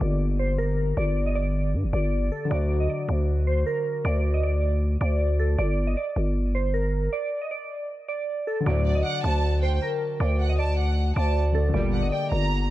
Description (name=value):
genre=hip hop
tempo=156 BPM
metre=4/4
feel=half-time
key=G harmonic minor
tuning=A4 = 440 Hz
part: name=glassy digital keys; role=melody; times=0.0-12.5 s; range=A4 to Eb5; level=-29 LUFS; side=right 1 dB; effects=chorus, low-pass filter
part: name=felt-muted upright piano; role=accompaniment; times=0.0-5.6, 8.6-12.7 s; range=D3 to D5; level=-32 LUFS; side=left 4 dB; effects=low-pass filter
part: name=growling 808-style bass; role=bass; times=0.0-12.7 s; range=G1 to G2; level=-23 LUFS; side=equal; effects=none
part: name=analog synth brass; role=stabs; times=8.7-8.9, 11.7-12.0 s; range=D2 to G3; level=-29 LUFS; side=equal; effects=chorus
part: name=dark studio violin section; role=second line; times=8.9-12.7 s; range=D5 to Bb5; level=-31 LUFS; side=right 2 dB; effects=tape echo
room=little or no reverb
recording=dark, warm production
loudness=-22 LUFS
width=side -15 dB against mid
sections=0.0-8.7 A section; 8.7-12.7 B section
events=stop 7.1-8.7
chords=0.0 Gm; 2.5 D; 5.6 G5; 8.7 D; 11.7 Gm